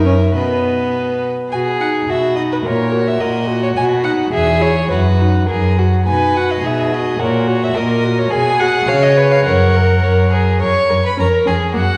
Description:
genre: quick classical-period movement for string quartet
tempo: 106 BPM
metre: 2/4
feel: straight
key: B major, F# major from 8.3 s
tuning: A4 = 440 Hz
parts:
  - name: rich violin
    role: melody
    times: 0.0-12.0 s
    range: B4 to C#6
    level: -23 LUFS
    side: equal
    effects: none
  - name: rich violin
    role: second line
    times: 0.0-12.0 s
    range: F#4 to C#5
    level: -21 LUFS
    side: equal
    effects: none
  - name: warm viola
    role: accompaniment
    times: 0.0-11.8 s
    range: A#3 to C#5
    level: -22 LUFS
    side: equal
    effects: none
  - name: warm cello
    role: bass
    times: 0.0-11.8 s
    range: E2 to C#3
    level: -19 LUFS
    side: equal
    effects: none
room: wet concert hall reverb, RT60 2.0 s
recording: heard from further back in the room, nothing above 10.9 kHz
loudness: -15 LUFS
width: mono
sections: 0.0-1.5 A section; 1.5-10.6 A section; 10.6-12.0 B section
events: none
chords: 0.4 B; 2.7 F#/A#; 3.8 B; 4.3 E; 4.9 B/F#; 5.5 F#; 6.1 B; 7.2 F#/A#; 8.3 G#m7/B; 8.9 C#9; 9.5 F#; 11.2 C#/E#

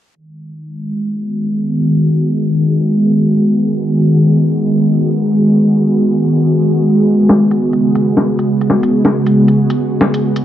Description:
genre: future garage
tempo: free time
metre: none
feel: none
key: G# minor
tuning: A4 = 440 Hz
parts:
  - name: ethereal airy pad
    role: sustained chords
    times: 0.7-10.4 s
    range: C#3 to G#4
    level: -11 LUFS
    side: equal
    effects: ensemble chorus, built-in reverb
  - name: electronic bongos and hi-hat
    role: drums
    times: 7.3-10.4 s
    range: none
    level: -15 LUFS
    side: left 1 dB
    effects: small room reverb
room: wet recital hall reverb, RT60 1.7 s, digital ambience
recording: cassette tape, low-pass filter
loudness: -11 LUFS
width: side -11 dB against mid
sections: 0.2-10.4 A section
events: filter sweep on ambient pad 0.2-10.4; filter sweep 0.2-10.4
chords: 0.2 G#m7; 7.2 C#7sus4

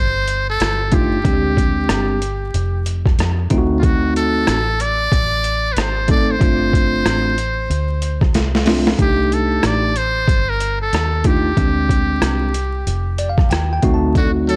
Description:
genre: hip hop, jazz-hop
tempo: 93 BPM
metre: 4/4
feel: swing 61% on 16ths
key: C dorian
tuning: A4 = 440 Hz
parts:
  - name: trumpet with metal mute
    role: melody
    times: 0.0-14.6 s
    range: F4 to D5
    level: -24 LUFS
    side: equal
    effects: tape echo
  - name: deep dub fingered electric bass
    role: bass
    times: 0.0-14.6 s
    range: F1 to F2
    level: -24 LUFS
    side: equal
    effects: none
  - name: boom bap sampler-style drum kit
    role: drums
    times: 0.3-14.6 s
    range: hi-hat, kick drum, rim click, snare drum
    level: -20 LUFS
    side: equal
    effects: overdrive, vintage 12-bit sampler grit
  - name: bell-like tine electric piano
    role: accompaniment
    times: 0.9-14.6 s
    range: Ab3 to A5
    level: -21 LUFS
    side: equal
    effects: none
  - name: breathy trombone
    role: second line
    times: 14.2-14.6 s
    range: D3 to F#3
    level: -26 LUFS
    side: equal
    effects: none
room: little or no reverb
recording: dry, gritty hardware recording, vinyl crackle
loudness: -17 LUFS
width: mono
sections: 0.0-9.0 A section; 9.0-14.6 A section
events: drum fill 8.3-9.0; tine electric piano fill 12.9-14.2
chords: 0.0 Cm69; 1.2 Fm69; 3.5 D7b9; 6.4 G9sus4; 9.0 Cm69; 11.6 Fm13; 13.8 D7b9

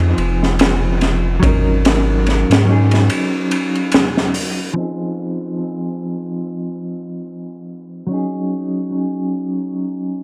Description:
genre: trip hop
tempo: 72 BPM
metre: 4/4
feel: swing 57% on 16ths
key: F phrygian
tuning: A4 = 439 Hz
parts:
  - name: mellow electric guitar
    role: accompaniment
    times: 0.0-10.2 s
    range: F3 to Bb4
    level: -22 LUFS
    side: equal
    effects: tremolo, tape echo
  - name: warm sub bass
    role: bass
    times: 0.0-3.1 s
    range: F1 to Ab2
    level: -18 LUFS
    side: equal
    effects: none
  - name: crunchy breakbeat drum kit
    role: drums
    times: 0.0-4.6 s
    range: hi-hat, kick drum, ride cymbal, snare drum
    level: -20 LUFS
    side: equal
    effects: analog delay
room: light reverb, studio ambience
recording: echo-heavy mix, vinyl crackle, low-pass filter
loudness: -18 LUFS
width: mono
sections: 0.0-4.8 A section; 4.8-10.2 B section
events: break 3.1-4.8; filter sweep 4.8-10.2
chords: 0.0 Fm7; 1.4 Ab7sus4; 4.8 Fm7; 8.1 Ab7sus4

